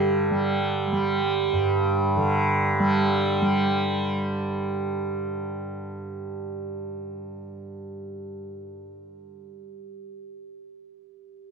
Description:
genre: world meditative, free-time meditation music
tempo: free time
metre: none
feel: none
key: unclear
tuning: A4 = 440 Hz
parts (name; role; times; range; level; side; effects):
- tanpura; drone; 0.0-10.0 s; G2 to G3; -25 LUFS; equal; none
- bronze singing bowl; texture; 0.0-4.1 s; G4; -30 LUFS; right 5 dB; none
room: wet church reverb, RT60 3.2 s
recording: dark, warm production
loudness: -22 LUFS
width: side -5 dB against mid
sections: 0.0-3.7 A section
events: none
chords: none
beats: free time

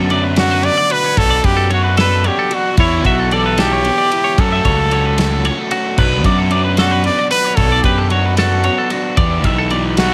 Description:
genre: math rock and midwest emo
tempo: 75 BPM (dotted quarters)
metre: 6/8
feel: straight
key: unclear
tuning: A4 = 442 Hz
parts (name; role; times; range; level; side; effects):
- twelve-string electric guitar; accompaniment; 0.0-1.2 s; D3 to A3; -29 LUFS; equal; none
- twelve-string electric guitar; arpeggios; 0.0-10.1 s; F#4 to E5; -22 LUFS; equal; tape echo
- overdriven semi-hollow guitar; riff; 0.0-10.1 s; B2 to G4; -25 LUFS; equal; none
- fuzz picked electric bass; bass; 0.0-10.1 s; B1 to F#2; -19 LUFS; equal; overdrive
- loose indie drum kit; drums; 0.1-10.1 s; crash cymbal, kick drum, ride cymbal, snare drum; -22 LUFS; equal; none
- warm trumpet; melody; 0.4-10.1 s; E4 to D5; -19 LUFS; equal; none
room: light reverb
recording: none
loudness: -15 LUFS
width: mono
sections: 0.0-10.1 A section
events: none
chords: 0.0 Bm7; 2.8 Em7; 4.4 F#m; 6.0 Bm7; 9.2 Em7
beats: 0.38 | 1.18 1.98 | 2.78 3.58 | 4.38 5.18 | 5.98 6.78 | 7.58 8.38 | 9.18 9.97

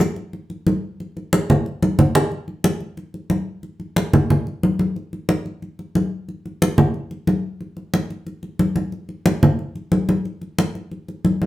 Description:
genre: latin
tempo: 181 BPM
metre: 4/4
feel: straight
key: none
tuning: none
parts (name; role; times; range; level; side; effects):
- congas; percussion; 0.0-11.5 s; none; -18 LUFS; equal; none
room: wet studio reverb, RT60 0.6 s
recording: band playing live in one room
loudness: -19 LUFS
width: side -15 dB against mid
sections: 0.0-2.3 A section; 2.3-11.5 B section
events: drum fill 1.8-2.3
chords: none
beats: 0.00 0.33 0.66 | 0.99 1.32 1.65 1.98 | 2.31 2.64 2.97 3.30 | 3.63 3.96 4.29 4.62 | 4.96 5.29 5.62 5.95 | 6.28 6.61 6.94 7.27 | 7.60 7.93 8.27 8.60 | 8.93 9.26 9.59 9.92 | 10.25 10.58 10.91 11.25

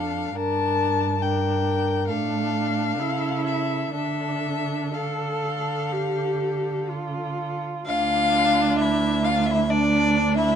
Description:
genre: classical, slow romantic movement for string quartet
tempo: 60-71 BPM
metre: 4/4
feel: rubato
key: D minor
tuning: A4 = 440 Hz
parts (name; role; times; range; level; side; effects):
- warm violin; melody; 0.0-10.6 s; D4 to A5; -28 LUFS; left 8 dB; none
- rich violin; second line; 0.0-10.6 s; A4 to F5; -26 LUFS; left 2 dB; none
- warm viola; accompaniment; 0.0-10.6 s; D4 to A4; -27 LUFS; right 2 dB; none
- warm cello; bass; 0.0-10.6 s; D2 to D3; -27 LUFS; right 5 dB; none
room: light reverb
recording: dark, warm production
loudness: -21 LUFS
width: side -8 dB against mid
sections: 0.0-7.9 A section; 7.9-10.6 B section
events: none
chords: 0.4 Gmadd9; 2.1 Dm/A; 3.0 A/C#; 4.0 Dm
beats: | 0.38 1.23 2.10 3.00 | 3.96 4.96 5.93 6.90 | 7.87 8.80 9.70

